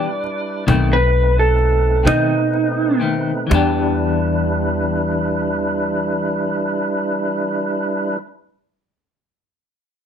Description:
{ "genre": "slow blues", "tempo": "40-46 BPM (dotted quarters)", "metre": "12/8", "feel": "straight", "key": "E minor", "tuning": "A4 = 440 Hz", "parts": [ { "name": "electric slide guitar", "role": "melody", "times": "0.0-3.0 s", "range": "D#4 to D5", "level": "-18 LUFS", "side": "right 2 dB", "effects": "none" }, { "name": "semi-hollow electric guitar", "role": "accompaniment", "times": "0.0-8.3 s", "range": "B2 to G4", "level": "-22 LUFS", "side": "left 6 dB", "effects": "tremolo" }, { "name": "tonewheel organ", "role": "sustained chords", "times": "0.0-8.2 s", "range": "G3 to B4", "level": "-21 LUFS", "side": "right 1 dB", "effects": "slow rotary speaker, overdrive, chorus vibrato" }, { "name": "cajon", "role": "drums", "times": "0.2-3.7 s", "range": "none", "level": "-22 LUFS", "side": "equal", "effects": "none" }, { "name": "upright bass", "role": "bass", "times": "0.7-8.2 s", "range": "B1 to B2", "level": "-20 LUFS", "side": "equal", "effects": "none" } ], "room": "moderate club reverb, RT60 0.7 s", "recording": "none", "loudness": "-16 LUFS", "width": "side -8 dB against mid", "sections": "0.0-3.5 A section; 3.5-9.5 B section", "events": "slowing down 0.0-3.5; electric slide guitar solo 0.0-3.5", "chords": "0.0 Em7; 0.7 B7b9; 3.5 Em7", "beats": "0.69 2.06 | 3.52 5.02 6.53 8.04" }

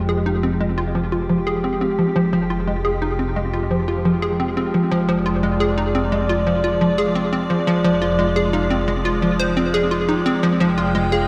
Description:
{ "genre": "ambient, sequencer-driven space music", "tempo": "87 BPM", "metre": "4/4", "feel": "straight", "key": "F dorian", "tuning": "A4 = 439 Hz", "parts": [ { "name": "evolving wavetable pad", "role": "sustained chords", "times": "0.0-11.3 s", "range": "F3 to G5", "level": "-24 LUFS", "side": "equal", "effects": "chorus, built-in reverb, shimmer reverb" }, { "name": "Celtic harp", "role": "arpeggios", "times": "0.0-11.3 s", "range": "C4 to F5", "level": "-34 LUFS", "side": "equal", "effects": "shimmer reverb, analog delay" }, { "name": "fat analog bass", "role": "bass", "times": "0.0-11.3 s", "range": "F1", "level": "-29 LUFS", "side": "equal", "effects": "none" }, { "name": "hollow square pluck", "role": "riff", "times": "0.1-11.3 s", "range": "F3 to C5", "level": "-22 LUFS", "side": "equal", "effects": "analog chorus, shimmer reverb, analog delay" } ], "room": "wet scoring stage reverb, RT60 2.0 s", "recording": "none", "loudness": "-19 LUFS", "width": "mono", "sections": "0.0-11.3 A section", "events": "fade-in on harp 0.0-11.3", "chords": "0.0 Fmadd9", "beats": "0.09 0.78 1.47 | 2.16 2.85 3.54 4.22 | 4.91 5.60 6.29 6.98 | 7.67 8.36 9.05 9.74 | 10.43 11.12" }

